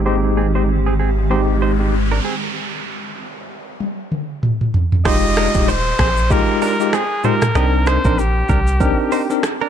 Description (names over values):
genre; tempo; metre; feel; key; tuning
afrobeats; 96 BPM; 4/4; swing 58% on 16ths; F dorian; A4 = 436 Hz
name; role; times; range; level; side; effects
bell-like tine electric piano; accompaniment; 0.0-9.4 s; Ab3 to Bb4; -20 LUFS; left 2 dB; medium stereo tremolo, low-pass filter
granular cloud pad; sustained chords; 0.0-2.5 s; Eb3 to G4; -25 LUFS; right 2 dB; built-in reverb, low-pass filter
punchy sub bass; bass; 0.0-8.9 s; Eb1 to C2; -18 LUFS; equal; none
direct-recorded clean electric guitar; riff; 0.1-9.7 s; C4 to Eb5; -26 LUFS; right 8 dB; low-pass filter, ping-pong delay
noise sweep and downlifter; sound effects; 0.9-9.7 s; none; -29 LUFS; right 1 dB; none
afro-pop drum kit; drums; 3.8-9.6 s; finger snaps, hi-hat, kick drum, rim click, shaker, toms; -19 LUFS; equal; vintage 12-bit sampler grit
breathy trumpet; melody; 5.1-9.4 s; G4 to Eb5; -21 LUFS; equal; low-pass filter, ping-pong delay
room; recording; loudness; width
light reverb, digital ambience; dark, warm production; -15 LUFS; side -9 dB against mid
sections
0.0-5.1 A section; 5.1-9.7 B section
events
filter sweep 0.0-5.1; noise sweep 0.9-5.1; stop 2.6-5.1; drum fill 3.8-5.1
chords
0.0 Abmaj7; 2.6 N.C.; 5.1 Fm9; 7.6 Cm9